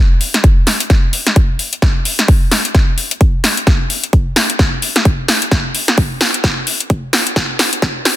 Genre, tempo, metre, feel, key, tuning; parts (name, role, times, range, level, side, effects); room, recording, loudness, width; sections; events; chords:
house; 130 BPM; 4/4; swing 59% on 16ths
big-room dance drum kit; drums; 0.2-8.2 s; hi-hat, snare drum; -14 LUFS; left 1 dB; high-pass filter on hats, high-pass filter on snare
electronic kick drum; drums; 0.4-7.9 s; -12 LUFS; equal
light reverb, digital ambience; dense, heavily limited modern master, high-pass filter; -11 LUFS; side -14 dB against mid
0.0-8.2 A section
build-up 0.0-8.2; drum fill 0.0-8.2; filter sweep 0.0-8.2